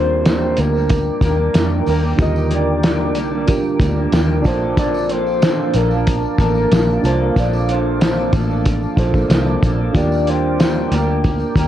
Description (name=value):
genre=indie pop, bedroom pop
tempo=93 BPM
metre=4/4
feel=straight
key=Bb major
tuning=A4 = 441 Hz
part: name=soft octave-layered synth lead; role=melody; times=0.0-11.7 s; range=Bb4 to Eb5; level=-21 LUFS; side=left 2 dB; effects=wide subtle chorus, tape echo
part: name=electric guitar through a small old amp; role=accompaniment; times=0.0-11.7 s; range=Bb2 to A4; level=-22 LUFS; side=right 1 dB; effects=wide subtle chorus, warbly pitch drift
part: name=reed electric piano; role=accompaniment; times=0.0-11.7 s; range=D3 to A5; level=-24 LUFS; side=right 3 dB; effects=none
part: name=shimmering ambient pad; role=sustained chords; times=0.4-11.7 s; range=Bb3 to D6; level=-27 LUFS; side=right 1 dB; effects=chorus, built-in reverb, phaser
part: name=fingered electric bass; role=bass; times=0.0-11.7 s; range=A1 to F2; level=-20 LUFS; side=equal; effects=none
part: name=cloth-damped thuddy drum kit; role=drums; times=0.3-11.7 s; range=hi-hat, kick drum, snare drum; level=-18 LUFS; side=equal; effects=none
part: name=tambourine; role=percussion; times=0.3-11.7 s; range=none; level=-42 LUFS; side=right 2 dB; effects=none
room=light reverb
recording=cassette tape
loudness=-14 LUFS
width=side -11 dB against mid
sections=0.0-11.7 A section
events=none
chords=0.0 Ebmaj7; 4.5 Bbmaj7; 9.9 Ebmaj7